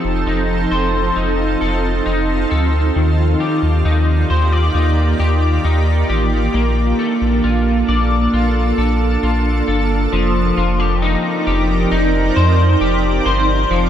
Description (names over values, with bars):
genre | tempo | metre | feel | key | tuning
dream pop | 67 BPM | 4/4 | straight | unclear | A4 = 441 Hz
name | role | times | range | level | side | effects
shimmering ambient pad | sustained chords | 0.0-13.9 s | Eb3 to D5 | -20 LUFS | right 2 dB | chorus, built-in reverb
electric guitar at the edge of break-up | arpeggios | 0.0-13.9 s | Eb3 to D5 | -19 LUFS | left 3 dB | analog chorus, tape echo
round analog bass | bass | 0.0-13.9 s | F1 to F2 | -16 LUFS | equal | none
room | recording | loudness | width
moderate huge ambient reverb, RT60 7.2 s | none | -14 LUFS | side -10 dB against mid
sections
0.0-10.1 A section; 10.1-13.9 B section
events
none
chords
0.0 F7; 3.0 Ebmaj7; 6.5 Bbmaj7; 10.1 Cm7/F